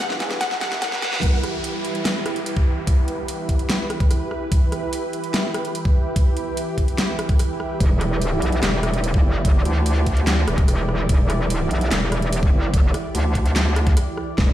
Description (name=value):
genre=heavy wobble dubstep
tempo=146 BPM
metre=4/4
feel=half-time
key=E minor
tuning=A4 = 439 Hz
part: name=wide unison pluck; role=melody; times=0.0-1.2 s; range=F#5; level=-26 LUFS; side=left 1 dB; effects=digital delay
part: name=lush unison pad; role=sustained chords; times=0.0-14.5 s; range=E3 to D5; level=-28 LUFS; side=right 1 dB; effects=chorus, sidechain pumping
part: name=dubstep drum kit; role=drums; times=0.0-14.5 s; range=handclaps, hi-hat, rim click, snare drum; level=-26 LUFS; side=equal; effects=none
part: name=electronic kick drum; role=drums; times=0.0-14.5 s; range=none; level=-17 LUFS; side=equal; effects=none
part: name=riser, reverse cymbal, downlifter and impact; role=sound effects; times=0.0-4.5, 14.4-14.5 s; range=none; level=-31 LUFS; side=right 1 dB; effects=none
part: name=granular cloud pad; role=texture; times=0.1-14.5 s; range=G3 to B4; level=-32 LUFS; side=right 1 dB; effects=built-in reverb, sidechain pumping
part: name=metallic wobble bass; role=bass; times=7.8-14.5 s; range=E1 to D2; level=-20 LUFS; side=equal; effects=chorus, overdrive
room=light reverb, digital ambience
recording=played on a big sound system in a bare room, stone room reverb, high-pass filter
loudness=-18 LUFS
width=side -13 dB against mid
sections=0.0-1.2 A section; 1.2-14.4 B section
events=build-up 0.0-1.2; drum fill 0.0-1.2; riser 0.0-1.2; reverse cymbal 0.4-1.2; fade-out on ambient pad 1.2-14.4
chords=0.0 Em